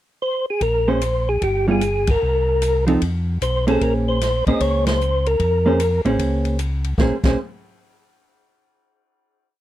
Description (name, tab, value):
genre	soul jazz organ trio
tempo	151 BPM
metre	4/4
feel	swing 65% on 8ths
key	Bb minor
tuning	A4 = 435 Hz
part	percussive tonewheel organ	melody	0.2-6.0 s	G4 to Eb5	-20 LUFS	equal	overdrive, chorus vibrato, fast rotary speaker
part	mellow tonewheel organ	bass	0.6-7.4 s	G1 to F2	-22 LUFS	equal	slow rotary speaker
part	open jazz drum kit	drums	0.6-7.3 s	crash cymbal, hi-hat, kick drum, ride cymbal, snare drum	-25 LUFS	equal	none
part	vintage hollow-body jazz guitar	accompaniment	0.9-7.4 s	F3 to C5	-20 LUFS	right 2 dB	none
room	little or no reverb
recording	dry, close 1970s-style studio recording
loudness	-17 LUFS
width	side -13 dB against mid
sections	0.0-0.6 pickup bar; 0.6-7.0 A section; 7.0-8.6 final chord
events	band accent 2.0, 4.8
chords	0.0 N.C.; 0.6 Bbm9; 1.4 G7b9; 2.2 Cm7; 3.0 F5; 3.8 Bbm9